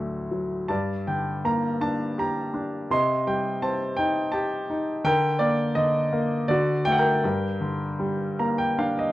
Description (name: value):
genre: classical, lyrical solo piano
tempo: 83 BPM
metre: 3/4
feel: uneven beats, rubato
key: G minor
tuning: A4 = 441 Hz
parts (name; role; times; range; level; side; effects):
- clear baby grand piano; solo; 0.0-9.1 s; D2 to C6; -22 LUFS; equal; none
room: light reverb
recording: worn, warbling old tape, cassette tape, warbly pitch drift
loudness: -22 LUFS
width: side -16 dB against mid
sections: 0.0-9.1 A section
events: grand piano fill 8.0-9.1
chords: 0.0 D; 0.7 Gm; 2.9 Cm; 5.0 Ebmaj7/D; 6.5 D; 7.2 Gm